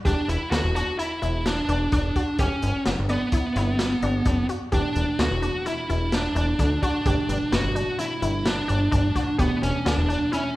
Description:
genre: progressive instrumental, band music in an uneven meter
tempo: 128 BPM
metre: 5/4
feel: straight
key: E dorian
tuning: A4 = 439 Hz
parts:
  - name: resonant blip pluck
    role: arpeggios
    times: 0.0-10.5 s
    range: B3 to G4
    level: -32 LUFS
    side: left 1 dB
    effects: chorus
  - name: smooth overdriven lead guitar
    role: melody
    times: 0.1-10.6 s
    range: B3 to F#4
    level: -26 LUFS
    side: equal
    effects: none
  - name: plucky analog bass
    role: bass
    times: 0.1-10.2 s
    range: E1 to D2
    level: -26 LUFS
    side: equal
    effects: none
  - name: crunchy breakbeat drum kit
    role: drums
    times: 0.1-10.4 s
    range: hi-hat, kick drum, snare drum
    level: -27 LUFS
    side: equal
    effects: none
  - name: tine electric piano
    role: accompaniment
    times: 4.7-10.6 s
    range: B2 to D4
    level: -33 LUFS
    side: right 1 dB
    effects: medium stereo tremolo
room: moderate recital hall reverb, RT60 1.6 s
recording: recorded in a church or concert hall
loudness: -21 LUFS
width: side -17 dB against mid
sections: 0.0-10.6 A section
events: none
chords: 0.1 E7(no3); 2.4 Gmaj7; 4.7 E7(no3); 7.1 Gmaj7; 9.4 Em7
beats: | 0.06 0.53 0.99 1.46 1.93 | 2.39 2.86 3.33 3.79 4.26 | 4.73 5.20 5.66 6.13 6.60 | 7.06 7.53 8.00 8.46 8.93 | 9.39 9.86 10.33

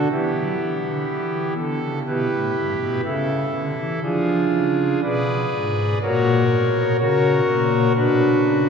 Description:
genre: classical, chorale-style piece for pipe organ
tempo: 61 BPM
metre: 4/4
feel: straight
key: unclear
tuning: A4 = 440 Hz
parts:
  - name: pipe organ, foundations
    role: solo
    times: 0.0-8.7 s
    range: G2 to D5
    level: -18 LUFS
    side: equal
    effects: none
room: wet cathedral reverb, RT60 4.5 s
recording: recorded in a church or concert hall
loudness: -18 LUFS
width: side -6 dB against mid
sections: 0.0-8.7 A section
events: none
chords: 0.1 Em; 4.0 Fdim7; 6.0 F#/A#; 8.0 Bm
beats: | 0.11 1.09 2.07 3.04 | 4.03 5.03 6.02 7.00 | 7.96

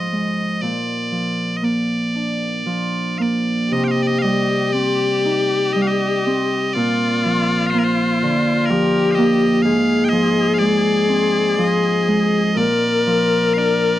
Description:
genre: celtic folk, Celtic slow air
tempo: 56-64 BPM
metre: 3/4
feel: rubato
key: unclear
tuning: A4 = 443 Hz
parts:
  - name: loud bright bagpipes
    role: melody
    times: 0.0-14.0 s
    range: Bb4 to G5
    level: -22 LUFS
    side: right 1 dB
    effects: none
  - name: Celtic harp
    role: accompaniment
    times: 0.0-14.0 s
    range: Ab2 to Eb4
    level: -19 LUFS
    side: right 1 dB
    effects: none
  - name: rich viola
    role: second line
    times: 3.7-14.0 s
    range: F4 to Bb4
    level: -19 LUFS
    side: left 4 dB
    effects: none
room: light reverb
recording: dry, close 1970s-style studio recording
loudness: -16 LUFS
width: side -13 dB against mid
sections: 0.0-3.7 A section; 3.7-14.0 A section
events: none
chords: 0.0 Fm/Ab; 0.6 Bb; 3.7 Cmadd9; 6.8 Bb; 9.6 Fm/Ab; 12.6 Bb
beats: | 0.62 1.63 2.67 | 3.73 4.75 5.76 | 6.75 7.73 8.70 | 9.64 10.60 11.57 | 12.56 13.56

